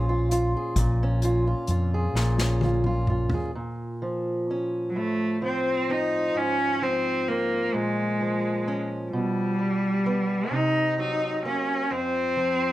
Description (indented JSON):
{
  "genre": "acoustic folk-pop ballad",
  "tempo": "43 BPM (dotted quarters)",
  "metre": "6/8",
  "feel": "straight",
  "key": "Bb minor",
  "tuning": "A4 = 440 Hz",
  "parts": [
    { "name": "fingerpicked acoustic archtop guitar", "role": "accompaniment", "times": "0.0-12.7 s", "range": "F2 to Ab4", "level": "-28 LUFS", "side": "right 1 dB", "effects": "none" },
    { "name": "fretless electric bass", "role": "bass", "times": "0.0-3.3 s", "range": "Bb1 to F2", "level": "-24 LUFS", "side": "equal", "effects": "none" },
    { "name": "unplugged drum kit", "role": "drums", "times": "0.3-3.5 s", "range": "hi-hat, kick drum, snare drum, toms", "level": "-28 LUFS", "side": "left 1 dB", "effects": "none" },
    { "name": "clear cello", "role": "melody", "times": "4.9-12.7 s", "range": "Gb3 to Eb4", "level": "-24 LUFS", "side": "equal", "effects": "none" }
  ],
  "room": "light reverb",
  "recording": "none",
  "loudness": "-23 LUFS",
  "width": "side -15 dB against mid",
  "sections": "0.0-3.5 A section; 3.5-12.7 B section",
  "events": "drum fill 2.1-3.5",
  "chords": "0.0 Bbm7; 3.5 Bbm; 5.0 F/A; 6.4 Ab69; 7.7 Bbm7; 9.1 G7/B; 10.5 Cm7b5; 11.9 F5"
}